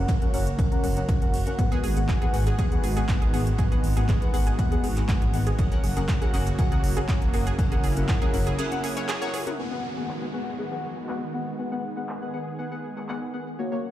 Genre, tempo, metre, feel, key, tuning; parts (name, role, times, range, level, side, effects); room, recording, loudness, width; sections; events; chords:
progressive house; 120 BPM; 4/4; straight; G# minor; A4 = 440 Hz
supersaw pad; sustained chords; 0.0-13.9 s; C#3 to G#4; -33 LUFS; right 2 dB; sidechain pumping, low-pass filter
deep mellow chord stab; stabs; 0.0-13.9 s; A#3 to F#5; -31 LUFS; left 3 dB; chorus, sidechain pumping, ping-pong delay
dark detuned saw bass; bass; 0.0-8.5 s; F#1 to D#2; -26 LUFS; equal; sidechain pumping
big-room dance drum kit; drums; 0.1-13.2 s; crash cymbal, handclaps, hi-hat, toms; -38 LUFS; right 1 dB; overdrive, low-pass filter on hats, low-pass filter on snare, low-pass filter on toms, low-pass filter on cymbals, low-pass filter on room
electronic kick drum; drums; 0.1-8.2 s; -24 LUFS; equal; overdrive
jazz brush drum kit; drums; 0.1-9.5 s; hi-hat, ride cymbal, snare drum; -44 LUFS; right 2 dB; sidechain pumping on cymbals, high-pass filter on cymbals, sidechain pumping on hats, high-pass filter on hats, high-pass filter on snare, high-pass filter on room
analog pluck; arpeggios; 1.7-9.4 s; G#4 to C#5; -36 LUFS; right 4 dB; chorus, sidechain pumping, ping-pong delay
downlifter; sound effects; 9.6-13.6 s; -41 LUFS; right 2 dB
little or no reverb; played on a big sound system in a bare room, large studio reverb; -23 LUFS; side -13 dB against mid
0.0-9.6 A section; 9.6-13.9 B section
filter sweep on supersaw synth 0.0-9.6; break 8.6-9.6; drum fill 9.3
0.0 F#; 1.6 G#m7; 5.6 F#; 9.6 G#m7